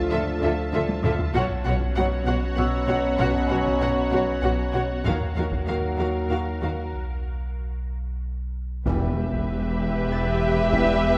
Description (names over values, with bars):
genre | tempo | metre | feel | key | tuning
cinematic, suspense film score | 97 BPM | 3/4 | straight | unclear | A4 = 442 Hz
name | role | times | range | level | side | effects
bright trombone section | sustained chords | 0.0-10.9 s | B2 to G3 | -35 LUFS | equal | none
dark French horn section | sustained chords | 0.0-10.9 s | A3 to F#4 | -31 LUFS | equal | none
evolving wavetable pad | sustained chords | 0.0-11.2 s | F4 to A5 | -36 LUFS | equal | ensemble chorus, built-in reverb
warm sub bass | drone | 0.0-11.2 s | E1 to D#2 | -32 LUFS | equal | none
concert harp | texture | 0.0-5.1, 10.1-11.2 s | E6 to A6 | -42 LUFS | equal | none
muted studio violin section | melody | 0.1-11.2 s | E5 to F#5 | -32 LUFS | equal | none
muted studio violin section | second line | 0.1-11.2 s | A4 to C#5 | -36 LUFS | equal | none
muted studio viola section | accompaniment | 0.1-11.2 s | F#3 to G4 | -35 LUFS | equal | none
muted studio cello section | bass | 0.1-11.2 s | E2 to D#3 | -33 LUFS | equal | none
muted studio double bass section | bass | 0.1-11.2 s | E1 to D#2 | -32 LUFS | equal | none
taiko ensemble | drums | 0.1-11.2 s | none | -33 LUFS | equal | none
muted studio violin section | texture | 1.3-4.7 s | F#5 to B5 | -44 LUFS | equal | none
timpani | percussion | 8.9-9.8 s | E2 | -34 LUFS | equal | none
impact | sound effects | 8.9-10.7 s | none | -39 LUFS | equal | none
room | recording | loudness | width
moderate concert hall reverb, RT60 1.9 s | none | -24 LUFS | mono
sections
0.0-8.9 A section; 8.9-11.2 B section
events
drum fill 0.9-1.3; break 6.9-8.9; impact 8.9-10.7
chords
0.0 Dmadd9; 1.3 Bsus2; 5.1 D#madd9; 6.9 N.C.; 8.9 Em